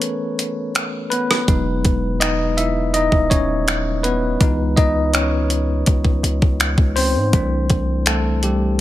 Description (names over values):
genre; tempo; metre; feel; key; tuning
contemporary R&B; 82 BPM; 4/4; straight; E major; A4 = 440 Hz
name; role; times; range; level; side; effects
bell-like tine electric piano; accompaniment; 0.0-8.8 s; E3 to E5; -20 LUFS; left 1 dB; fast stereo tremolo
gated 80s digital drum machine; drums; 0.0-8.6 s; finger snaps, hi-hat, kick drum, rim click; -18 LUFS; equal; overdrive
long sustained 808-style bass; bass; 1.5-8.8 s; D#1 to G#2; -21 LUFS; equal; none
room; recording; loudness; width
little or no reverb; none; -16 LUFS; side -14 dB against mid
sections
0.0-8.8 A section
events
break 0.0-1.5; tine electric piano solo 0.0-8.8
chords
0.0 B9sus4; 1.5 Emaj9; 4.4 C#m9; 7.3 C69